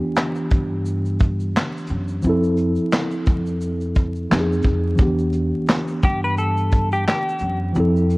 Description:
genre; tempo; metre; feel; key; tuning
lo-fi hip hop; 87 BPM; 4/4; swing 58% on 16ths; unclear; A4 = 436 Hz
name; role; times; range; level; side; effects
mellow tine electric piano; accompaniment; 0.0-8.2 s; E3 to A4; -22 LUFS; equal; medium stereo tremolo, cassette tape, low-pass filter
vintage brush drum kit; drums; 0.2-8.2 s; handclaps, hi-hat, kick drum, shaker, snare drum; -19 LUFS; equal; vintage 12-bit sampler grit
upright bass; bass; 0.5-8.2 s; E2 to G2; -23 LUFS; equal; none
semi-hollow electric guitar; melody; 6.0-7.6 s; G4 to B4; -23 LUFS; left 1 dB; low-pass filter
room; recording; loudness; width
light reverb, studio ambience; worn, warbling old tape, cassette tape, vinyl crackle, warbly pitch drift; -18 LUFS; side -23 dB against mid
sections
0.0-8.2 A section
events
break 0.0-5.0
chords
0.0 Em7; 2.2 Fmaj7; 4.3 Fm7; 5.0 Em7

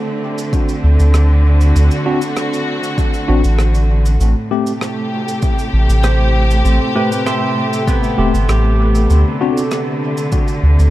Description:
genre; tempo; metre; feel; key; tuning
ambient dub; 98 BPM; 4/4; straight; unclear; A4 = 438 Hz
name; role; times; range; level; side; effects
dark studio string section; sustained chords; 0.0-10.9 s; A2 to G4; -19 LUFS; equal; none
cabasa and rim click; drums; 0.4-10.9 s; none; -28 LUFS; right 1 dB; dub echo
electronic kick drum; drums; 0.5-10.5 s; none; -16 LUFS; equal; overdrive
soft dub sub bass; bass; 0.8-10.9 s; E1 to D2; -11 LUFS; equal; none
tine electric piano; stabs; 2.1-9.6 s; A3 to G4; -22 LUFS; left 2 dB; medium stereo tremolo, dub echo
pedal steel guitar; arpeggios; 6.0-10.0 s; B3 to C6; -22 LUFS; right 1 dB; dub echo
room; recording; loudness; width
small room ambience; none; -12 LUFS; side -15 dB against mid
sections
0.0-10.9 A section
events
none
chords
0.0 D7; 4.2 Am7; 9.1 D7(no3)

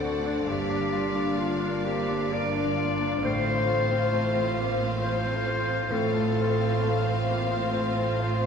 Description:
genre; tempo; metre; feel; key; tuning
cinematic; 67 BPM; 3/4; rubato; unclear; A4 = 440 Hz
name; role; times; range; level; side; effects
mellow clarinet; second line; 0.0-7.3 s; F4 to D5; -29 LUFS; left 3 dB; none
rich studio violin section; second line; 0.0-8.5 s; C5 to F#5; -33 LUFS; left 2 dB; none
bright grand piano; accompaniment; 0.0-8.5 s; D2 to C5; -32 LUFS; left 1 dB; none
rich studio viola section; accompaniment; 0.0-8.5 s; Bb3 to F4; -33 LUFS; right 1 dB; none
concert harp; arpeggios; 0.0-8.5 s; G2 to D5; -33 LUFS; left 3 dB; none
rich studio cello section; bass; 0.0-8.5 s; G2 to D3; -34 LUFS; right 3 dB; none
rich studio double bass section; bass; 0.0-8.5 s; G1 to D2; -32 LUFS; right 5 dB; none
room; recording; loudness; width
wet scoring stage reverb, RT60 1.7 s; heard from further back in the room; -24 LUFS; side -6 dB against mid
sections
0.0-8.5 A section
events
none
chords
0.5 Gm7; 3.2 F/A

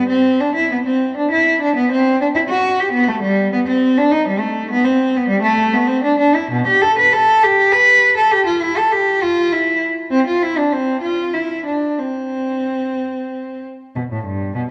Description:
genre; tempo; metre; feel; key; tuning
classical, baroque-style suite movement for unaccompanied cello; 90-104 BPM; 3/4; rubato; C major from 6.5 s; A4 = 440 Hz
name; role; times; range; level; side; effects
rich cello; solo; 0.0-14.6 s; G2 to B4; -16 LUFS; equal; none
room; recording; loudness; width
moderate concert hall reverb, RT60 2.5 s; worn, warbling old tape, cassette tape, warbly pitch drift; -16 LUFS; mono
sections
0.0-14.0 A section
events
none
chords
none

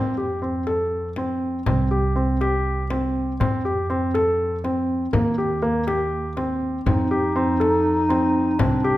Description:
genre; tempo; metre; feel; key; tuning
contemporary instrumental, chamber music in an uneven meter; 242 BPM (eighths); 7/8; straight; unclear; A4 = 441 Hz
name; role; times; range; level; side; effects
warm grand piano; arpeggios; 0.0-9.0 s; Bb3 to A4; -22 LUFS; equal; none
upright bass; bass; 0.0-9.0 s; C2 to F2; -26 LUFS; right 2 dB; none
frame drum; percussion; 0.7-8.8 s; none; -28 LUFS; left 3 dB; none
breathy clarinet; second line; 6.9-9.0 s; D4 to Eb4; -22 LUFS; equal; none
room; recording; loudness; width
moderate recital hall reverb, RT60 1.7 s; none; -20 LUFS; side -15 dB against mid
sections
0.0-9.0 A section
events
none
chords
0.0 F; 1.7 C5; 3.4 F; 5.1 Eb; 6.9 F7

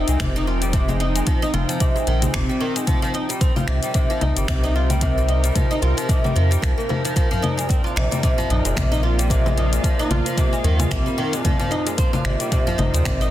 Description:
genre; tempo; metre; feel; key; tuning
organic downtempo; 112 BPM; 4/4; swing 57% on 16ths; F minor; A4 = 435 Hz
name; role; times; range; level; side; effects
bowed-like drone; sustained chords; 0.0-13.3 s; Bb2 to G5; -28 LUFS; equal; built-in reverb, sidechain pumping
oud; arpeggios; 0.0-13.3 s; C3 to F4; -24 LUFS; equal; tape echo
warm sub bass; bass; 0.0-13.3 s; F1 to F2; -20 LUFS; equal; tube saturation, sidechain pumping
afro-pop drum kit; drums; 0.1-13.3 s; congas, finger snaps, hi-hat, shaker; -26 LUFS; left 3 dB; soft clipping on snare
electronic kick drum; drums; 0.2-13.2 s; none; -21 LUFS; equal; none
tabla; percussion; 7.3-13.0 s; none; -31 LUFS; left 2 dB; none
room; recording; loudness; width
light reverb; dense, heavily limited modern master; -18 LUFS; side -13 dB against mid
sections
0.0-13.3 A section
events
none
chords
0.0 Fm7; 2.9 Cm7; 7.2 Bb5; 11.4 Abmaj7

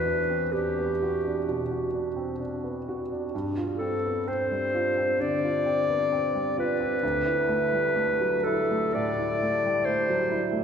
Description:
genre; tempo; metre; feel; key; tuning
classical, impressionist duo for clarinet and grand piano; 57-69 BPM; 4/4; rubato; unclear; A4 = 440 Hz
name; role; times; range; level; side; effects
clear clarinet; melody; 0.0-10.5 s; G4 to D5; -26 LUFS; left 1 dB; none
clear grand piano; accompaniment; 0.0-10.6 s; D2 to F#4; -29 LUFS; right 1 dB; none
room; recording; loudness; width
wet church reverb, RT60 3.3 s; recorded in a church or concert hall; -24 LUFS; side -7 dB against mid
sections
0.0-10.6 A section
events
none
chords
0.0 Em9; 3.3 G7sus4; 7.0 Dadd9

